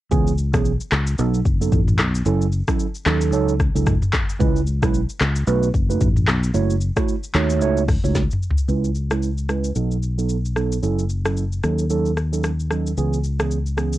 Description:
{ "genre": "afrobeats", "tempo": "112 BPM", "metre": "4/4", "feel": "swing 58% on 16ths", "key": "C# minor", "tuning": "A4 = 439 Hz", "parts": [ { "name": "mellow tine electric piano", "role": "accompaniment", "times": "0.1-14.0 s", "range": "E3 to C#5", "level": "-23 LUFS", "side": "right 6 dB", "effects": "wide subtle chorus, low-pass filter, cassette tape" }, { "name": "fingered electric bass", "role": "bass", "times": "0.1-14.0 s", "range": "F#1 to D#2", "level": "-21 LUFS", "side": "left 1 dB", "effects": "none" }, { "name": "afro-pop drum kit", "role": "drums", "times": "0.1-14.0 s", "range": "handclaps, hi-hat, kick drum, rim click, shaker, snare drum, toms", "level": "-22 LUFS", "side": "left 1 dB", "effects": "vintage 12-bit sampler grit" } ], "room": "light reverb", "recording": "home recording on cassette", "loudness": "-18 LUFS", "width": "side -15 dB against mid", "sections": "0.0-8.7 A section; 8.7-14.0 B section", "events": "drum fill 8.2-8.7; filter sweep on tine electric piano 8.7-14.0", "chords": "0.1 C#m7; 1.2 B7; 2.3 F#m7; 3.1 D#m7b5; 4.4 C#m7; 5.5 B7; 6.5 F#m7; 7.3 D#m7b5; 8.7 C#m7; 9.8 B7; 10.8 F#m7; 11.6 D#m7b5; 13.0 C#m7" }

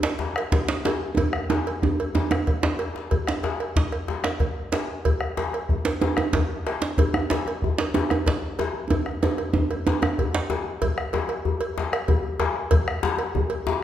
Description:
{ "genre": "west african traditional, West African drum ensemble", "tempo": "125 BPM (dotted quarters)", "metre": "12/8", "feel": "straight", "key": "none", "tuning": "none", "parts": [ { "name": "cowbell", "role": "percussion", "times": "0.0-13.7 s", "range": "none", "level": "-31 LUFS", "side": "right 4 dB", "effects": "none" }, { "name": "djembe", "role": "percussion", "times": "0.0-13.8 s", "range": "none", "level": "-27 LUFS", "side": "left 5 dB", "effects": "none" }, { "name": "djembe", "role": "percussion", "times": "0.0-10.5 s", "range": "none", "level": "-25 LUFS", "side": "right 4 dB", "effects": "none" }, { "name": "bombo", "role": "percussion", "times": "0.4-13.5 s", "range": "none", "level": "-27 LUFS", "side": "equal", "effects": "none" } ], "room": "wet recital hall reverb, RT60 1.5 s", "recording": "none", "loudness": "-22 LUFS", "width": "side -11 dB against mid", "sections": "0.0-3.1 A section; 3.1-10.8 B section; 10.8-13.8 C section", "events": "speeding up 0.0-13.8; drum fill 1.2-3.1, 8.9-10.8", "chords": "none" }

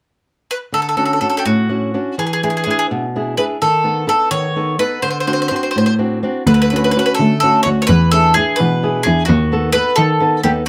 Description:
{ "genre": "italian folk, Italian serenade", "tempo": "85 BPM (dotted quarters)", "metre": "6/8", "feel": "rubato", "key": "D major", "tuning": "A4 = 440 Hz", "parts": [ { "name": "bowl-back mandolin", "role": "melody", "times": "0.5-10.7 s", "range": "F#4 to C#5", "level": "-19 LUFS", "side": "equal", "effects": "none" }, { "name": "flamenco guitar", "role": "accompaniment", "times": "0.7-10.6 s", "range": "A2 to A4", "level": "-20 LUFS", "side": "equal", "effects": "none" }, { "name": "rich cello", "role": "bass", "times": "6.5-10.6 s", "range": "D2 to E3", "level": "-18 LUFS", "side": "equal", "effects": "none" } ], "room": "light reverb", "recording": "none", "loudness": "-16 LUFS", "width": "mono", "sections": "0.7-6.5 A section; 6.5-10.7 B section", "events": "none", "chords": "0.0 N.C.; 0.7 Dmaj7; 2.2 E7; 3.6 B7/D#; 5.0 D7; 6.5 Dmaj7; 7.9 E7; 9.3 B7/D#" }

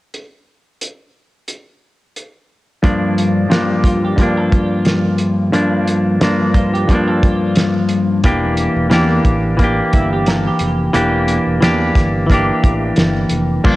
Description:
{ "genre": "indie pop, bedroom pop", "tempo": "89 BPM", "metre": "4/4", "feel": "swing 55% on 16ths", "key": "unclear", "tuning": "A4 = 440 Hz", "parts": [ { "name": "cloth-damped thuddy drum kit", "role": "drums", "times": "0.1-13.8 s", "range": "crash cymbal, hi-hat, kick drum, snare drum", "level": "-16 LUFS", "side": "equal", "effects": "cassette tape" }, { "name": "semi-hollow electric guitar", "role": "accompaniment", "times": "2.8-13.8 s", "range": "G2 to G4", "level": "-14 LUFS", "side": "left 1 dB", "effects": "wide subtle chorus, warbly pitch drift, cassette tape" }, { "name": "semi-hollow electric guitar", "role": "second line", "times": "3.8-11.4 s", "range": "E4 to A4", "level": "-26 LUFS", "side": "right 3 dB", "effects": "analog chorus, cassette tape, analog delay" }, { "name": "fretless electric bass", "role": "bass", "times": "8.2-13.8 s", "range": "E1 to E2", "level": "-20 LUFS", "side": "equal", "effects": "none" } ], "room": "moderate lush hall reverb, RT60 2.3 s", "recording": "home recording on cassette", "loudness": "-12 LUFS", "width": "side -18 dB against mid", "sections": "0.1-2.8 A section; 2.8-13.7 B section", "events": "none", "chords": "0.1 N.C.; 2.8 Gm7; 8.2 Em7b5" }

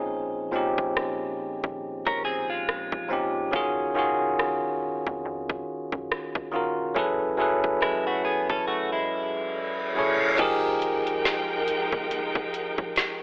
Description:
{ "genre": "contemporary R&B", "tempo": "70 BPM", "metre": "4/4", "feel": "swing 58% on 16ths", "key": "unclear", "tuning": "A4 = 440 Hz", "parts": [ { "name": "bell-like tine electric piano", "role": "accompaniment", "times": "0.0-13.2 s", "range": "Bb2 to Db5", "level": "-29 LUFS", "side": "equal", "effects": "none" }, { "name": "rubbery square bass", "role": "bass", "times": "0.0-13.1 s", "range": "Fb1 to Gb2", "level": "-49 LUFS", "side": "equal", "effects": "transformer saturation" }, { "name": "trap drum kit", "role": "drums", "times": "0.8-13.2 s", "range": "crash cymbal, hi-hat, kick drum, rim click, snare drum", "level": "-31 LUFS", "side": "equal", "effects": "none" }, { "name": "direct-recorded clean electric guitar", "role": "arpeggios", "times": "2.1-10.2 s", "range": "Ab3 to Bb4", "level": "-31 LUFS", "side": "equal", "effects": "lush chorus" }, { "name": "reverse cymbal and impact", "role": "sound effects", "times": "9.2-13.2 s", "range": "none", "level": "-32 LUFS", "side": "equal", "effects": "none" }, { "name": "warm symphonic string section", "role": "sustained chords", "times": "10.4-13.2 s", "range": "F3 to G5", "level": "-32 LUFS", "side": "equal", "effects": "none" } ], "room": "light reverb, digital ambience", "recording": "dry, gritty hardware recording, telephone sound", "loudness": "-27 LUFS", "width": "mono", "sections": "0.0-10.4 A section; 10.4-13.2 B section", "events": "reverse cymbal 9.2-10.4; impact 10.4-13.2", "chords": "0.0 Bbm11; 3.5 Ebm11; 7.0 Gbm11; 10.4 Fm11" }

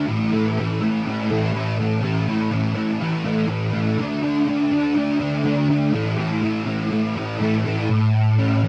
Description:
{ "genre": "rock", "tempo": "123 BPM", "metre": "4/4", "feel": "straight", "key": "unclear", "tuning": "A4 = 438 Hz", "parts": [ { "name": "fuzz guitar", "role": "solo", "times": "0.0-8.7 s", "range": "A2 to D4", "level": "-21 LUFS", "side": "equal", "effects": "distortion, ensemble chorus" } ], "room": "light reverb", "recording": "dark, warm production", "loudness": "-21 LUFS", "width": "mono", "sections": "0.0-7.9 A section", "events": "none", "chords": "0.1 A5; 4.0 D5; 5.9 A5; 7.9 A" }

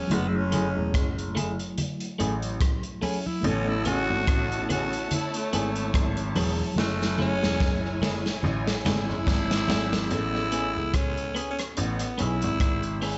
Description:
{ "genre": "lovers rock reggae", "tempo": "72 BPM", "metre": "4/4", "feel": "swing 56% on 16ths", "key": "A major", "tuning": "A4 = 440 Hz", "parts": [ { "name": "growling tenor saxophone", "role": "melody", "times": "0.0-13.2 s", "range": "A3 to F#4", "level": "-33 LUFS", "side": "equal", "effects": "tape echo" }, { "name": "mellow tine electric piano", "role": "accompaniment", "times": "0.0-13.2 s", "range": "F#3 to A5", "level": "-36 LUFS", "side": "equal", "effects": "medium tremolo, tape echo" }, { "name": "warm baby grand piano", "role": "bass", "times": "0.1-13.2 s", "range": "E1 to C#2", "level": "-32 LUFS", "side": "equal", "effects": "none" }, { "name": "crunchy breakbeat drum kit", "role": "drums", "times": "0.1-13.2 s", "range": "hi-hat, kick drum, rim click, snare drum", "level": "-31 LUFS", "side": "equal", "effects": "gated reverb, tape echo" }, { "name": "congas", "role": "percussion", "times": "0.1-10.1 s", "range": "none", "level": "-36 LUFS", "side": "equal", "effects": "tape echo" }, { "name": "clean electric guitar", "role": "stabs", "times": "0.5-13.2 s", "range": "A3 to G#4", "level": "-35 LUFS", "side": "equal", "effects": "none" }, { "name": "warm studio string section", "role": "second line", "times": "3.4-10.1 s", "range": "E4 to A5", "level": "-38 LUFS", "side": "equal", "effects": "tape echo" } ], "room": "small room ambience", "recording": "nothing above 7.9 kHz", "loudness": "-26 LUFS", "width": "mono", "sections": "0.0-10.1 A section; 10.1-13.2 B section", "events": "tenor saxophone solo 0.0-10.1; drum fill 6.8-10.1; tine electric piano fill 8.9-10.1", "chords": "0.1 F#m9; 3.4 Amaj9; 6.8 F#m9; 10.1 Amaj9" }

